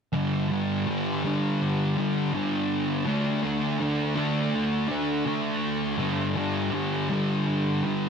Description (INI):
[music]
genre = rock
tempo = 82 BPM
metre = 4/4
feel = straight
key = unclear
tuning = A4 = 442 Hz
[part]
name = thick fuzz guitar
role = solo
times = 0.1-8.1 s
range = G2 to D4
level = -24 LUFS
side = equal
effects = distortion, analog chorus
[sound]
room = moderate huge ambient reverb, RT60 8.5 s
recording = none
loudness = -24 LUFS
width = side -6 dB against mid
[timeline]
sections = 0.1-8.1 A section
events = none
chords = 0.1 G5; 3.1 D5; 6.0 G5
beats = | 0.13 0.86 1.60 2.33 | 3.06 3.80 4.53 5.27 | 6.00 6.74 7.47